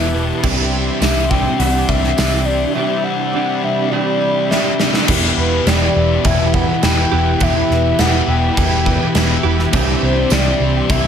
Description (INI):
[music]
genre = rock, shoegaze and dream pop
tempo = 103 BPM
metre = 4/4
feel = straight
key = E minor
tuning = A4 = 439 Hz
[part]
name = pure breathy sine lead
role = melody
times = 0.0-11.1 s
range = B4 to G5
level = -21 LUFS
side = left 3 dB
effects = chorus, digital delay
[part]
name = chorused pulse-width pad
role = sustained chords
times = 0.0-11.1 s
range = G4 to C6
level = -26 LUFS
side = equal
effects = none
[part]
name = fingerpicked twelve-string acoustic guitar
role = arpeggios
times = 0.0-11.1 s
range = G3 to E4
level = -27 LUFS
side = right 11 dB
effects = ensemble chorus, digital delay
[part]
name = direct-recorded clean electric guitar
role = riff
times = 0.0-11.1 s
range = C3 to G4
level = -22 LUFS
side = right 11 dB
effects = reverse reverb
[part]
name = thick fuzz guitar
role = riff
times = 0.0-11.1 s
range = E2 to C4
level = -21 LUFS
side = left 10 dB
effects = distortion, analog chorus
[part]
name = vintage muted picked electric bass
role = bass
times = 0.0-11.1 s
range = E1 to C2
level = -19 LUFS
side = equal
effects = none
[part]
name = gated 80s drum kit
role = drums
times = 0.4-11.0 s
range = crash cymbal, hi-hat, kick drum, snare drum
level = -18 LUFS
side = equal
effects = none
[part]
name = tambourine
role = percussion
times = 1.0-2.3, 10.3-10.4 s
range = none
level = -30 LUFS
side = right 11 dB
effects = none
[sound]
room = light reverb, studio reverb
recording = none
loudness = -13 LUFS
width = side -8 dB against mid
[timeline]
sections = 0.0-5.1 A section; 5.1-11.1 B section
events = drum fill 4.5-5.1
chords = 0.4 Cadd9; 5.1 Em; 9.7 Cadd9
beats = | 0.43 1.02 1.60 2.18 | 2.76 3.35 3.93 4.51 | 5.09 5.67 6.25 6.83 | 7.42 8.00 8.58 9.16 | 9.74 10.32 10.90